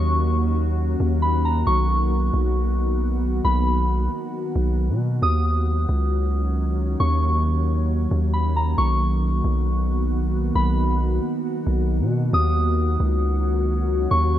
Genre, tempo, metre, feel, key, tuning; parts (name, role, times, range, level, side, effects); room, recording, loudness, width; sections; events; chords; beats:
hip hop, atmospheric cloud-rap; 135 BPM; 4/4; half-time; B major; A4 = 440 Hz
soft synth bell; melody; 0.0-14.4 s; A#5 to D#6; -27 LUFS; equal; chorus, low-pass filter, tape echo
glassy FM pad; sustained chords; 0.0-14.4 s; D#3 to F#4; -26 LUFS; left 1 dB; ensemble chorus, built-in reverb
long sustained 808-style bass; bass; 0.0-14.4 s; B1 to B2; -20 LUFS; equal
little or no reverb; rough home demo mix; -19 LUFS; side -12 dB against mid
0.0-14.4 A section
0.0 D#m7; 1.7 Bmaj7; 5.2 D#m7; 8.8 Bmaj7; 12.3 D#m7
0.33 0.78 1.22 | 1.67 2.11 2.56 3.00 | 3.44 3.89 4.33 4.78 | 5.22 5.67 6.11 6.56 | 7.00 7.45 7.89 8.33 | 8.78 9.22 9.67 10.11 | 10.56 11.00 11.45 11.89 | 12.33 12.78 13.22 13.67 | 14.11